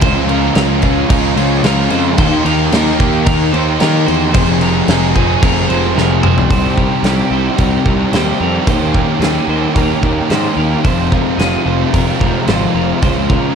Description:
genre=rock, shoegaze and dream pop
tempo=111 BPM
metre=4/4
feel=straight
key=F minor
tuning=A4 = 440 Hz
part: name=clean electric guitar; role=arpeggios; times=0.0-13.6 s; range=G4 to C5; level=-23 LUFS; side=equal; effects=lush chorus, slapback echo
part: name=overdriven electric guitar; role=riff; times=0.0-13.6 s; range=F2 to Ab4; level=-17 LUFS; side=right 12 dB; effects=reverse reverb
part: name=thick fuzz guitar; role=riff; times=0.0-13.6 s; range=F2 to Eb4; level=-17 LUFS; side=left 11 dB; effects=distortion, analog chorus
part: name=fuzz picked electric bass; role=bass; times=0.0-13.4 s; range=F1 to Eb3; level=-17 LUFS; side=equal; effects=overdrive
part: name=big rock drum kit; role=drums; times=0.0-13.4 s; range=crash cymbal, hi-hat, kick drum, snare drum, toms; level=-17 LUFS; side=equal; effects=none
room=light reverb, studio reverb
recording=dark, warm production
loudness=-11 LUFS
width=side -6 dB against mid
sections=0.0-6.5 A section; 6.5-13.6 B section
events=drum fill 6.0-6.5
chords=0.0 Db; 2.2 Eb; 4.3 Fm; 6.5 Cm7; 8.7 Eb7sus4; 10.8 Fm; 13.0 Dbmaj7

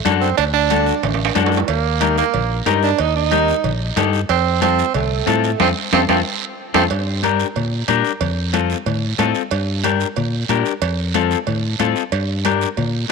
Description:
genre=latin, cumbia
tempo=184 BPM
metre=4/4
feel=straight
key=G minor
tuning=A4 = 440 Hz
part: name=clear tenor saxophone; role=second line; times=0.0-6.8 s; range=A3 to Eb4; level=-20 LUFS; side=right 13 dB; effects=none
part: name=clean electric guitar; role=accompaniment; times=0.0-13.1 s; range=C4 to Bb4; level=-21 LUFS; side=left 14 dB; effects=wide subtle chorus
part: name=fingered electric bass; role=bass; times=0.1-13.0 s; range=A1 to Bb2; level=-21 LUFS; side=equal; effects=none
part: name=congas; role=percussion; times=0.1-12.9 s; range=none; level=-27 LUFS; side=left 12 dB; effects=none
part: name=cowbell and timbales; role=percussion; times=0.1-12.9 s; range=none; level=-24 LUFS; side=right 14 dB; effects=none
part: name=guiro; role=percussion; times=0.1-13.1 s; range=none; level=-30 LUFS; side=right 16 dB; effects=none
room=light reverb, small room ambience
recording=1960s-style stereo with parts hard left and right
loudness=-16 LUFS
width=side -4 dB against mid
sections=0.0-6.9 A section; 6.9-13.1 B section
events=tenor saxophone solo 0.0-6.9; drum fill 1.0-1.7, 5.6-6.9; band accent 5.6-6.9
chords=0.0 D; 1.7 Eb; 4.3 F; 6.9 Gm; 8.2 F; 9.5 Gm; 10.8 F; 12.1 Gm

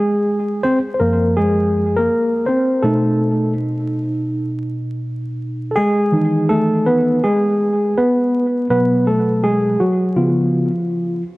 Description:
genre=hip hop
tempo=82 BPM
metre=4/4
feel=swing 65% on 16ths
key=unclear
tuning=A4 = 437 Hz
part: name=tine electric piano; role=solo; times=0.0-11.2 s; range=F#2 to B#4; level=-15 LUFS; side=equal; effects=medium stereo tremolo, cassette tape, analog delay
room=light reverb, digital ambience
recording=home recording on cassette, vinyl crackle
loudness=-15 LUFS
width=side -20 dB against mid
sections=0.0-11.4 A section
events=tine electric piano solo 0.0-11.4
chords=0.0 F#maj9#11; 2.8 B7; 5.8 Emaj7; 8.7 G#m7/B; 10.2 C#7

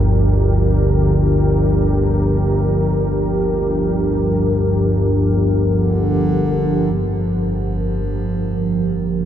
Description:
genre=dark ambient drone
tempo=free time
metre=none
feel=none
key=G minor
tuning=A4 = 440 Hz
part: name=dark analog pad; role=sustained chords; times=0.0-9.3 s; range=F3 to Bb4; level=-19 LUFS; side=right 1 dB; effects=chorus
part: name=analog drone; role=drone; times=0.0-9.3 s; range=G1 to D2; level=-17 LUFS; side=equal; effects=chorus
part: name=warm bass clarinet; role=melody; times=5.6-9.3 s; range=D3 to F3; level=-26 LUFS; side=left 1 dB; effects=tape echo
room=moderate huge ambient reverb, RT60 8.2 s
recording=dark, warm production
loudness=-15 LUFS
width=side -10 dB against mid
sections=0.0-7.0 A section; 7.0-9.3 B section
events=filter sweep on synth drone 7.0-9.3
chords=0.0 Gm7

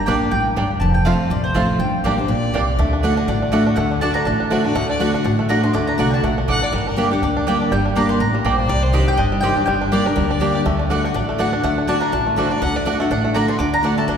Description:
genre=bluegrass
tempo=244 BPM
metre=4/4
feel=swing 56% on 8ths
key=unclear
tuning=A4 = 440 Hz
part: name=mandolin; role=melody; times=0.0-14.2 s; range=C5 to D6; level=-24 LUFS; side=left 1 dB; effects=none
part: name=picked steel-string acoustic guitar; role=accompaniment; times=0.0-14.2 s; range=F2 to G4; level=-20 LUFS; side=left 1 dB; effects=none
part: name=bluegrass banjo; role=arpeggios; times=0.1-14.2 s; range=G3 to G4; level=-25 LUFS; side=right 3 dB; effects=none
part: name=mandolin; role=stabs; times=0.1-13.9 s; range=A3 to C6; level=-25 LUFS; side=right 3 dB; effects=none
part: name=upright bass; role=bass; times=0.1-14.2 s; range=F1 to D2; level=-23 LUFS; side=equal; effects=none
part: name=clear fiddle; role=second line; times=2.1-12.9 s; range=Bb4 to F#5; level=-28 LUFS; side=left 2 dB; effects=none
room=wet church reverb, RT60 2.8 s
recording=recorded in a church or concert hall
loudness=-16 LUFS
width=side -7 dB against mid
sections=0.0-2.8 A section; 2.8-10.7 B section; 10.7-14.2 B section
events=none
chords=0.0 Gm; 0.8 F; 1.8 Gm; 2.8 D; 6.7 Gm; 8.7 Cmadd9; 9.7 Gm; 10.7 D

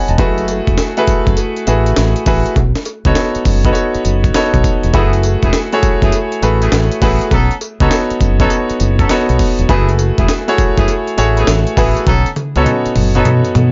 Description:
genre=R&B, new jack swing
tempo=101 BPM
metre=4/4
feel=swing 65% on 16ths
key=F# dorian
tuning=A4 = 440 Hz
part: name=clear concert grand piano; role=accompaniment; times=0.0-13.7 s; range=A3 to A5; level=-18 LUFS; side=equal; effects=none
part: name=deep dub fingered electric bass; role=bass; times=0.1-13.7 s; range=E1 to B2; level=-17 LUFS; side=equal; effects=none
part: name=breakbeat sampler-style drum kit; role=drums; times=0.1-13.7 s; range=hi-hat, kick drum, snare drum, tambourine, toms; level=-18 LUFS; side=equal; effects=overdrive
part: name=cowbell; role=percussion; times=0.2-13.7 s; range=none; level=-33 LUFS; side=equal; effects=none
part: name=warm horn section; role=stabs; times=4.9-13.3 s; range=A3 to A4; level=-23 LUFS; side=equal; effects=none
room=little or no reverb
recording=nothing above 7.5 kHz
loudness=-14 LUFS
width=mono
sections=0.0-13.7 A section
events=drum fill 12.1-13.7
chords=0.2 F#m11; 2.6 B9; 4.9 F#m11; 7.3 B9; 9.7 F#m11; 12.1 B9

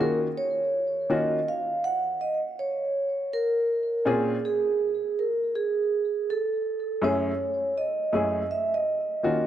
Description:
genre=hip hop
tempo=81 BPM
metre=4/4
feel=swing 59% on 16ths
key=Eb minor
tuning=A4 = 439 Hz
part: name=vibraphone with soft mallets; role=melody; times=0.0-9.5 s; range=Ab4 to Gb5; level=-25 LUFS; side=right 2 dB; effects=tape echo
part: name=clear upright piano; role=accompaniment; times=0.0-9.5 s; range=Gb2 to Ab4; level=-28 LUFS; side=left 2 dB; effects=none
room=light reverb, small room ambience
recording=none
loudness=-24 LUFS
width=side -11 dB against mid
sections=0.0-9.5 A section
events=none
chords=0.0 Ebm9; 2.9 Bbm9; 5.9 Gbm9; 8.9 Ebm9

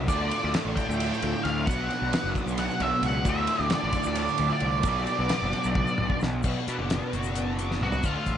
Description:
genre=psychedelic rock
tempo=264 BPM (eighths)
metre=7/8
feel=straight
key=unclear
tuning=A4 = 440 Hz
part: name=phased string machine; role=sustained chords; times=0.0-8.4 s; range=A3 to D6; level=-37 LUFS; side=right 2 dB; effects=ensemble chorus, phaser
part: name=cranked stack guitar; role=riff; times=0.0-8.4 s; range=D2 to B4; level=-30 LUFS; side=left 1 dB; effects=overdrive, flanger
part: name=fuzz picked electric bass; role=bass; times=0.0-8.4 s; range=F#1 to B2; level=-30 LUFS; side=equal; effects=overdrive
part: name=octave-fuzz lead guitar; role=melody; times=0.1-8.4 s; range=F4 to G5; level=-29 LUFS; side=right 2 dB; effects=wah, distortion, slapback echo
part: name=damped 70s drum kit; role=drums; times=0.1-8.4 s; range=crash cymbal, hi-hat, kick drum, ride cymbal, snare drum, toms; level=-30 LUFS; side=equal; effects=none
part: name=tube shaker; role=percussion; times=0.1-8.1 s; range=none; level=-48 LUFS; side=left 14 dB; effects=none
room=moderate spring reverb, RT60 1.1 s, small room ambience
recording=nothing above 10.5 kHz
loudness=-24 LUFS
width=side -9 dB against mid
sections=0.0-6.4 A section; 6.4-8.0 B section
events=drum fill 5.8-6.4, 7.7-8.0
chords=0.1 Dm; 1.7 Bm; 3.3 Dm; 4.8 Bm

